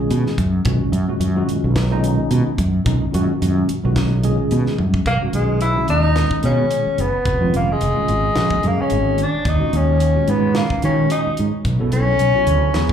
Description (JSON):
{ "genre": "electric jazz fusion", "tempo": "109 BPM", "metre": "4/4", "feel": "swing 55% on 16ths", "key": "B major", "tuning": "A4 = 440 Hz", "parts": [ { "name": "tine electric piano", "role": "accompaniment", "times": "0.0-12.9 s", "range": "A#2 to A4", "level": "-23 LUFS", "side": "equal", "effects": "medium stereo tremolo, plate reverb, slapback echo" }, { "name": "fretless electric bass", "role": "bass", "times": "0.1-12.9 s", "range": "E#1 to D#3", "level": "-18 LUFS", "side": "right 1 dB", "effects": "none" }, { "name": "crisp fusion drum kit", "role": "drums", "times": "0.1-12.9 s", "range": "hi-hat, kick drum, snare drum, toms", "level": "-25 LUFS", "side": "equal", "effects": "none" }, { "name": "warm tenor saxophone", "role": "melody", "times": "5.1-12.9 s", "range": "G#3 to E4", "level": "-19 LUFS", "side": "left 2 dB", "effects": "plate reverb, slapback echo, tape echo" } ], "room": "light reverb", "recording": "live gig heard through the venue's PA, club reverb", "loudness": "-16 LUFS", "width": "side -8 dB against mid", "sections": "0.0-5.1 A section; 5.1-12.9 B section", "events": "drum fill 4.8", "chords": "0.0 Bmaj9; 5.1 Bmaj13; 7.3 C#13/E#; 8.4 A#7alt; 9.5 D#m7; 11.7 Bm9" }